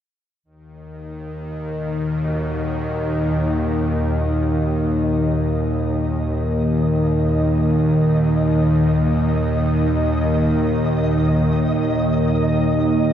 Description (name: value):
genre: dark ambient drone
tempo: free time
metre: none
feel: none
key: Eb minor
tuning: A4 = 439 Hz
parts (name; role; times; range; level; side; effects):
- deep dark ambient pad; sustained chords; 1.6-13.1 s; Eb3 to Eb5; -21 LUFS; equal; chorus, built-in reverb, shimmer reverb
- bowed-like drone; drone; 0.8-13.1 s; Eb2 to Eb3; -20 LUFS; equal; built-in reverb
- flickering grainy texture; texture; 1.0-13.1 s; Eb5; -32 LUFS; equal; built-in reverb, shimmer reverb
- old church bells; arpeggios; 2.2-10.1 s; Bb2 to Gb4; -43 LUFS; left 1 dB; none
room: wet cathedral reverb, RT60 5.8 s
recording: none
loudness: -17 LUFS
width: side -9 dB against mid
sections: 0.4-13.1 A section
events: fade-in on synth texture 0.4-13.1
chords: 0.4 Eb5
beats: free time